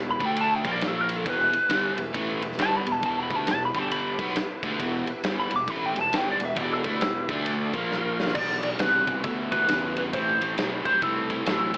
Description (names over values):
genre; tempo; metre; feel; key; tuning
blues rock power trio and southern rock; 135 BPM; 4/4; swing 62% on 8ths; E minor; A4 = 441 Hz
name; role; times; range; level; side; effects
overdriven tonewheel organ; sustained chords; 0.0-11.8 s; G3 to E#5; -36 LUFS; equal; none
crunchy overdriven guitar; riff; 0.0-11.8 s; E2 to D4; -29 LUFS; equal; spring reverb
fuzz fingered electric bass; bass; 0.0-11.8 s; E1 to E2; -34 LUFS; equal; overdrive
lightly driven lead guitar; melody; 0.1-11.8 s; E4 to D6; -25 LUFS; equal; wah
big rock drum kit; drums; 0.2-11.8 s; crash cymbal, kick drum, ride cymbal, snare drum; -31 LUFS; equal; none
room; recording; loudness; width
moderate studio reverb, RT60 0.5 s; AM radio sound; -23 LUFS; side -28 dB against mid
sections
0.0-8.4 A section; 8.4-11.8 B section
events
lead electric guitar solo 0.0-8.4; drum fill 7.9-8.4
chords
0.2 D5; 0.6 A#5; 1.3 Em; 3.7 G5; 4.1 Em; 7.2 D5; 7.7 A#5; 8.4 Em7; 10.1 Am7